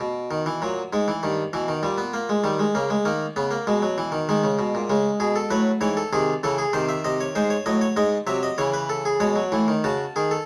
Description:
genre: classical, baroque-style 4-part fugue for harpsichord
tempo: 98 BPM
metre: 4/4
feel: straight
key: unclear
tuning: A4 = 440 Hz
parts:
  - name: harpsichord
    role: solo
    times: 0.0-10.5 s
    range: G2 to A5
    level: -23 LUFS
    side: equal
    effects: none
room: moderate stone room reverb, RT60 1.1 s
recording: vinyl crackle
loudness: -23 LUFS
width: mono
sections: 0.0-9.8 A section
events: none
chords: 0.0 G#m/B; 1.2 D#/G; 2.4 D#7; 3.7 G#m/B; 4.9 C#m; 6.1 G#/B#; 7.4 G#7; 8.6 C#m; 9.8 D#m7b5/C#

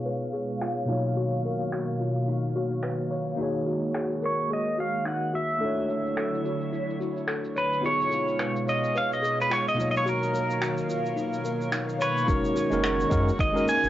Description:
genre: sunset chillout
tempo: 108 BPM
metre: 4/4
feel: swing 58% on 16ths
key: F# major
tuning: A4 = 440 Hz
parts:
  - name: tine electric piano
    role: accompaniment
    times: 0.0-13.9 s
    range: B2 to E#5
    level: -30 LUFS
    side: equal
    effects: auto-pan, cassette tape, analog delay
  - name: airy breathy pad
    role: sustained chords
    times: 0.0-13.9 s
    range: B2 to E#5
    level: -32 LUFS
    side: equal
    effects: chorus, phaser, cassette tape
  - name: buzzing kalimba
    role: arpeggios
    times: 0.1-13.8 s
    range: D#4 to C#5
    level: -33 LUFS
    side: left 2 dB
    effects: vintage 12-bit sampler grit, low-pass filter, cassette tape, analog delay
  - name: shaker and finger snaps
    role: drums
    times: 0.1-13.9 s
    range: none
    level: -34 LUFS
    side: equal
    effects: low-pass filter on perc, cassette tape, low-pass filter on snare, low-pass filter on room
  - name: pedal steel guitar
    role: melody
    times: 4.3-13.9 s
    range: A#4 to G#5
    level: -27 LUFS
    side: right 1 dB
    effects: cassette tape, analog delay
  - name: round analog bass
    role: bass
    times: 12.3-13.9 s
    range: F#1 to F#2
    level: -29 LUFS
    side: equal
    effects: none
  - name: electronic kick drum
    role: drums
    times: 12.3-13.5 s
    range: none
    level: -28 LUFS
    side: equal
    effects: overdrive, cassette tape
room: wet studio reverb, RT60 0.5 s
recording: home recording on cassette, low-pass filter, nothing above 7.7 kHz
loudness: -24 LUFS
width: side -13 dB against mid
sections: 0.0-12.3 A section; 12.3-13.9 B section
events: filter sweep on drum 0.0-12.3; filter sweep on analog synth pad 0.0-12.3; filter sweep on kalimba 0.0-12.3; filter sweep 0.0-12.3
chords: 0.0 C#7; 0.9 Bmaj9#11; 3.4 F#69; 5.6 Dmaj9; 7.8 C#7; 9.8 Bmaj9#11; 12.3 F#69

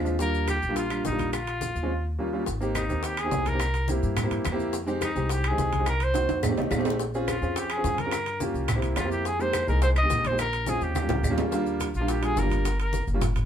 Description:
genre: Afro-Cuban jazz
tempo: 212 BPM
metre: 4/4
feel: straight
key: Ab major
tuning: A4 = 440 Hz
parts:
  - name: warm baby grand piano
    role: accompaniment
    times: 0.0-13.2 s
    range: Eb2 to F5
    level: -30 LUFS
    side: equal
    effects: none
  - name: upright bass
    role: bass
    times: 0.0-13.5 s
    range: Gb1 to G2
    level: -29 LUFS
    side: equal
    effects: none
  - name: congas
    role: percussion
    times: 0.1-13.5 s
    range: none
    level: -34 LUFS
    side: equal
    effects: none
  - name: maracas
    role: percussion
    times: 0.1-13.5 s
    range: none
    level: -42 LUFS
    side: left 4 dB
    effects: none
  - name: clear trumpet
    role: melody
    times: 0.2-13.1 s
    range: Eb4 to Eb5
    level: -29 LUFS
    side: equal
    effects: none
  - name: bongos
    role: percussion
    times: 0.2-13.5 s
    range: none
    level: -37 LUFS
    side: left 5 dB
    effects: none
  - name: claves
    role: percussion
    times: 0.5-11.4 s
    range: none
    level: -38 LUFS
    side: left 2 dB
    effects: none
  - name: timbales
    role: percussion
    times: 0.5-13.5 s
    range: none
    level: -34 LUFS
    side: right 5 dB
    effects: none
room: moderate small room reverb, RT60 0.6 s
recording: band playing live in one room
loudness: -24 LUFS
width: side -9 dB against mid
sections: 0.0-2.5 A section; 2.5-11.5 B section; 11.5-13.5 C section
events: drum fill 6.1-7.0, 11.0-11.5; grand piano fill 6.4-7.0; trumpet solo 11.5-13.5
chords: 0.2 Ebmaj7; 1.3 Bb7(no3); 1.9 Eb9; 2.5 Abmaj7; 3.6 C7; 4.7 Fm7; 5.9 Cm7b5; 6.4 F7; 7.0 Bbm7; 8.1 Gm7b5; 8.7 C7; 9.3 Fm11; 10.4 Bbm7; 11.0 Eb7; 11.5 Ebmaj7; 12.7 Gm7b5

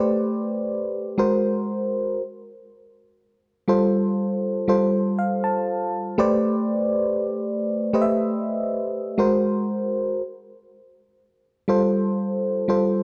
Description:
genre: R&B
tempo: 60 BPM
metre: 4/4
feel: straight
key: unclear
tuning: A4 = 442 Hz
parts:
  - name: FM electric piano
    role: solo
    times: 0.0-13.0 s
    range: G3 to A5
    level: -23 LUFS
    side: equal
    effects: none
room: moderate lush hall reverb, RT60 2.2 s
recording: none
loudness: -23 LUFS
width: mono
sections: 0.0-13.0 A section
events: FM electric piano fill 4.7-6.2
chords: 0.0 Am11; 1.2 G#9; 2.2 G9sus4; 6.2 Am11; 9.2 G#9; 10.2 G9sus4

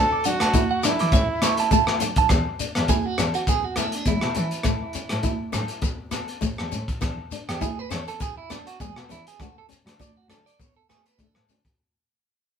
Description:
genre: highlife guitar band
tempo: 102 BPM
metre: 4/4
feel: swing 55% on 16ths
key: E mixolydian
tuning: A4 = 439 Hz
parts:
  - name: clear trumpet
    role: melody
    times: 0.0-2.0 s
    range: E4 to A4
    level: -26 LUFS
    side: right 2 dB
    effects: none
  - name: flamenco guitar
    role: accompaniment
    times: 0.0-11.7 s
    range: G#3 to E4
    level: -30 LUFS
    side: left 6 dB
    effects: none
  - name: clean electric guitar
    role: arpeggios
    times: 0.0-11.4 s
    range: B3 to D6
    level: -27 LUFS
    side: right 8 dB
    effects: tremolo
  - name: dark cello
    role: bass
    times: 0.0-11.6 s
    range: D2 to E3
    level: -28 LUFS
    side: equal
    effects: none
  - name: crunchy breakbeat drum kit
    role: drums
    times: 0.2-11.8 s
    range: hi-hat, kick drum, rim click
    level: -25 LUFS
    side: equal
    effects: none
  - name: shekere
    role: percussion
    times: 0.2-11.7 s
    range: none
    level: -33 LUFS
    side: left 5 dB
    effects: none
  - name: congas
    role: percussion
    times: 0.3-11.3 s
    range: none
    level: -32 LUFS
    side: right 5 dB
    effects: none
  - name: agogo bells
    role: percussion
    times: 0.4-11.5 s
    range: none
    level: -33 LUFS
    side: left 8 dB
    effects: none
room: moderate studio ambience, RT60 0.5 s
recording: band playing live in one room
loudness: -21 LUFS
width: side -7 dB against mid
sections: 0.0-2.3 A section; 2.3-11.8 B section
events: drum fill 1.9-2.3; fade-out 2.3-11.8; clean electric guitar solo 2.3-11.8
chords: 0.0 D; 1.1 A; 2.3 E; 4.7 A; 7.0 E; 9.4 D5

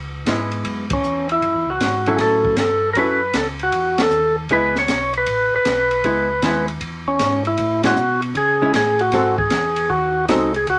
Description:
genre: soul jazz organ trio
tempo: 156 BPM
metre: 4/4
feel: swing 67% on 8ths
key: C# minor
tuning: A4 = 442 Hz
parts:
  - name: mellow tonewheel organ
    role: bass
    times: 0.0-10.8 s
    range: A1 to C#3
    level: -31 LUFS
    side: equal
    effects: overdrive, chorus vibrato, slow rotary speaker
  - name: hollow-body jazz guitar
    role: accompaniment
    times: 0.3-10.5 s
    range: F#3 to A4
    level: -23 LUFS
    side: equal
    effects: none
  - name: compact cocktail drum kit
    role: drums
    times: 0.3-10.8 s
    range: hi-hat, kick drum, ride cymbal, snare drum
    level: -28 LUFS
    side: equal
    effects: none
  - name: percussive tonewheel organ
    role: melody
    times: 0.9-10.8 s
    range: C#4 to C#5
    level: -20 LUFS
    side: equal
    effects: slow rotary speaker
room: moderate small room ambience, RT60 0.5 s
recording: none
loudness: -19 LUFS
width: mono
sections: 0.0-10.8 A section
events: band accent 0.8, 3.9, 7.8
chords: 0.0 C#m7; 1.4 F#m7; 4.5 C#m7; 7.6 Amaj7; 9.1 G#7b9

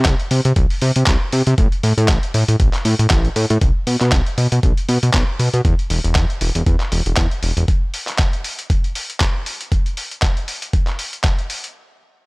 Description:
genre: nu-disco, nu disco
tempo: 118 BPM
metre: 4/4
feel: swing 56% on 16ths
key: unclear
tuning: A4 = 439 Hz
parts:
  - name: fat analog bass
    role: bass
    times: 0.0-7.6 s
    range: E1 to C3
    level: -16 LUFS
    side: equal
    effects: none
  - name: dusty soul sampler-style drum kit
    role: drums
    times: 0.0-11.7 s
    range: handclaps, hi-hat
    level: -23 LUFS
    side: equal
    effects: overdrive
  - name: electronic kick drum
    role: drums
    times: 0.1-11.4 s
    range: none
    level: -17 LUFS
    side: equal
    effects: overdrive
room: little or no reverb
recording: dry, gritty hardware recording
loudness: -15 LUFS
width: side -29 dB against mid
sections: 0.0-3.6 A section; 3.6-11.8 B section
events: drop 0.0-3.6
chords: none

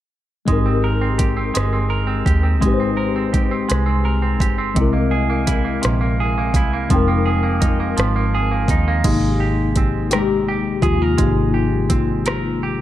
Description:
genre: slow six-eight R&B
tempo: 56 BPM (dotted quarters)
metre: 6/8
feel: straight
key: Ab major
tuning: A4 = 440 Hz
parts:
  - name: semi-hollow electric guitar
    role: second line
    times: 0.5-12.8 s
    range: C3 to Bb4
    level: -23 LUFS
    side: right 4 dB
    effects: spring reverb
  - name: tine electric piano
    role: accompaniment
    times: 0.5-12.8 s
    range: C3 to G5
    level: -21 LUFS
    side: left 4 dB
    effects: ensemble chorus
  - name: vintage muted fingered electric bass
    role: bass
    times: 0.5-12.8 s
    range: F1 to Eb2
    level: -21 LUFS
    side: right 1 dB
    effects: none
  - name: smooth R&B drum kit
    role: drums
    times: 0.5-12.4 s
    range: crash cymbal, hi-hat, kick drum, rim click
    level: -20 LUFS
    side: right 1 dB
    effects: none
room: little or no reverb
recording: dark, warm production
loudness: -16 LUFS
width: side -13 dB against mid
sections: 0.5-9.0 A section; 9.0-12.8 B section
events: tine electric piano solo 9.0-12.8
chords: 0.5 Abmaj9; 4.8 C7alt; 6.9 Fm11; 9.0 Abmaj9

